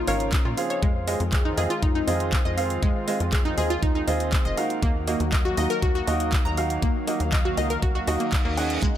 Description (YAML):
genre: progressive house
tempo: 120 BPM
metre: 4/4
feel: straight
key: unclear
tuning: A4 = 439 Hz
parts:
  - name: warm analog pad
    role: sustained chords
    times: 0.0-9.0 s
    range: Db3 to F5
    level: -32 LUFS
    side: left 1 dB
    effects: chorus, sidechain pumping
  - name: tight sequencer bass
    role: bass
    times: 0.0-9.0 s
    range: F1 to Bb2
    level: -29 LUFS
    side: equal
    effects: sidechain pumping
  - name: analog pluck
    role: arpeggios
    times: 0.1-8.9 s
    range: Ab3 to Bb5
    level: -29 LUFS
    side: left 1 dB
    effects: chorus, sidechain pumping, ping-pong delay
  - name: clear baby grand piano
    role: stabs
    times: 0.1-9.0 s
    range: Bb3 to Gb5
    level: -28 LUFS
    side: right 3 dB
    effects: sidechain pumping, ping-pong delay
  - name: big-room dance drum kit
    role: drums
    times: 0.1-8.9 s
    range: handclaps, hi-hat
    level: -32 LUFS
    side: equal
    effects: none
  - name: electronic kick drum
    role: drums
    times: 0.3-8.9 s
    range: none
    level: -23 LUFS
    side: equal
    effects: none
  - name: reverse cymbal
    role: sound effects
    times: 8.2-8.8 s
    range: none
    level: -34 LUFS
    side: right 2 dB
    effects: none
  - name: shekere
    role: percussion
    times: 8.8-9.0 s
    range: none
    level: -36 LUFS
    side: left 3 dB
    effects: none
room: little or no reverb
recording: none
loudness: -21 LUFS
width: side -11 dB against mid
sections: 0.0-9.0 A section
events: reverse cymbal 8.2-8.8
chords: 0.0 Bbm; 0.8 Fm7; 4.8 Ebm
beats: 0.33 | 0.82 1.32 1.82 2.33 | 2.83 3.33 3.83 4.33 | 4.83 5.33 5.83 6.33 | 6.83 7.33 7.83 8.32 | 8.82